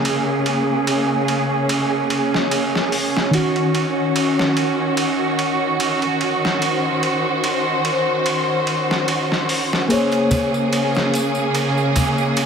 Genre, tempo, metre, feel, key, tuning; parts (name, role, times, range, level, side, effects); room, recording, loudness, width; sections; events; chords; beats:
trip hop; 73 BPM; 4/4; swing 54% on 16ths; Bb minor; A4 = 440 Hz
reed electric piano; accompaniment; 0.0-12.5 s; Eb3 to Db5; -22 LUFS; left 1 dB; harmonic tremolo, vintage 12-bit sampler grit, tape echo
rich symphonic string section; sustained chords; 0.0-12.5 s; Db3 to C5; -19 LUFS; right 1 dB; vintage 12-bit sampler grit, low-pass filter
bowed-like drone; texture; 0.0-12.5 s; Db4; -25 LUFS; right 1 dB; built-in reverb
trip hop sampler-style drum kit; drums; 0.1-12.5 s; hi-hat, ride cymbal, snare drum; -24 LUFS; right 1 dB; overdrive, high-pass filter on snare, studio ambience, high-pass filter on cymbals, high-pass filter on hats
tambourine and congas; percussion; 9.9-12.5 s; -25 LUFS; equal
moderate lush hall reverb, RT60 2.1 s; -17 LUFS; side -6 dB against mid
0.0-12.5 A section
filter sweep on string section 0.0-12.5
0.0 Bbm9; 3.3 Ebm7; 9.9 Bbm9
| 0.04 0.86 1.69 2.51 | 3.33 4.15 4.97 5.79 | 6.62 7.44 8.26 9.08 | 9.90 10.73 11.55 12.37